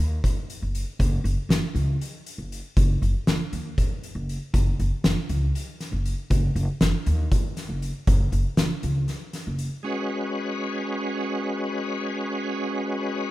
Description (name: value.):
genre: progressive instrumental, band music in an uneven meter.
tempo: 238 BPM (eighths).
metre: 7/8.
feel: straight.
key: unclear.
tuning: A4 = 439 Hz.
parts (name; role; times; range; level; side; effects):
upright bass; bass; 0.0-9.7 s; F#1 to D#2; -24 LUFS; equal; none.
oversized low-tuned drum kit; drums; 0.2-9.7 s; hi-hat, kick drum, snare drum; -24 LUFS; equal; none.
bright tonewheel organ; accompaniment; 9.8-13.3 s; G#3 to B4; -26 LUFS; equal; chorus vibrato, slow rotary speaker.
room: light reverb.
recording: rough home demo mix.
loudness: -23 LUFS.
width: side -16 dB against mid.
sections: 0.0-9.8 A section; 9.8-13.3 B section.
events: none.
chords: 0.0 D#m; 1.0 F#5; 2.8 D#m/F#; 4.5 F#5; 6.3 D#m/F#; 8.1 F#5; 9.8 F#sus4.